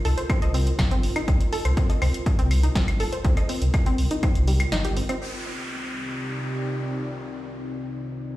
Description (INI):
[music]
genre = melodic techno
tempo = 122 BPM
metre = 4/4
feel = straight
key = C minor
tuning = A4 = 440 Hz
[part]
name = warbly tape-like pad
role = texture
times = 0.0-8.4 s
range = C4 to Eb5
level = -36 LUFS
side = left 2 dB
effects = chorus, built-in reverb, sidechain pumping
[part]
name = wide unison pluck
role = arpeggios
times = 0.1-5.2 s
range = G3 to Eb5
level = -30 LUFS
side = equal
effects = sidechain pumping, tape echo
[part]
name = swelling detuned saw bass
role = bass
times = 0.1-5.0 s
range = G1 to C2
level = -22 LUFS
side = equal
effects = sidechain pumping
[part]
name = punchy analog drum machine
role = drums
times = 0.1-5.2 s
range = claves, hi-hat, snare drum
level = -31 LUFS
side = equal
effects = none
[part]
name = electronic kick drum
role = drums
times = 0.3-4.3 s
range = none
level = -23 LUFS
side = equal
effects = none
[part]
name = sweeping resonant pad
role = sustained chords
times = 5.2-8.4 s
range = C3 to D5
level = -32 LUFS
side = right 1 dB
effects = chorus, sidechain pumping
[part]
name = downlifter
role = sound effects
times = 5.2-8.4 s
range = none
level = -35 LUFS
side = equal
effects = none
[sound]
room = digital ambience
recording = played on a big sound system in a bare room, large studio reverb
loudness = -22 LUFS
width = side -16 dB against mid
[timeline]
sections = 0.0-5.2 A section; 5.2-8.4 B section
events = break 4.7-5.2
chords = 0.0 Ebsus2; 5.2 Cmadd9